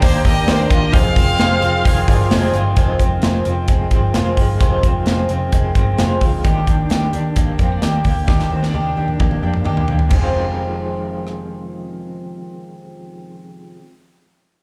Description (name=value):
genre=jangly indie pop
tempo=131 BPM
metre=4/4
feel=straight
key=F dorian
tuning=A4 = 443 Hz
part: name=rich violin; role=melody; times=0.0-2.3 s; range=C5 to F5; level=-23 LUFS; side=equal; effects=plate reverb, slapback echo
part: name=clear upright piano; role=accompaniment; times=0.0-2.8 s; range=D4 to D5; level=-30 LUFS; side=equal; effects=none
part: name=picked twelve-string acoustic guitar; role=accompaniment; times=0.0-13.8 s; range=F2 to G4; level=-28 LUFS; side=equal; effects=plate reverb
part: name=rich studio string section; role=sustained chords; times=0.0-2.7 s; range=G4 to C6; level=-31 LUFS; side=equal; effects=none
part: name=electric guitar through a small old amp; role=arpeggios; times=0.0-13.9 s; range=F2 to G4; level=-26 LUFS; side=equal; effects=tremolo, plate reverb, slapback echo, tape echo
part: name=vintage muted picked electric bass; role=bass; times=0.0-13.7 s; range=F1 to F2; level=-22 LUFS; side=equal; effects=none
part: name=modern studio drum kit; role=drums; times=0.0-11.4 s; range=crash cymbal, hi-hat, kick drum, rim click, snare drum, toms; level=-19 LUFS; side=equal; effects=none
part: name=warm studio violin section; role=second line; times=1.4-2.7 s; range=G4 to C5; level=-31 LUFS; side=equal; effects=plate reverb, slapback echo
room=light reverb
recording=live gig heard through the venue's PA, club reverb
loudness=-16 LUFS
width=mono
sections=0.0-2.8 A section; 2.8-10.1 B section; 10.1-13.8 C section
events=drum fill 8.3-10.1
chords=0.0 Ebmaj7; 0.9 Fm7; 6.4 Ebmaj7; 10.1 Fm7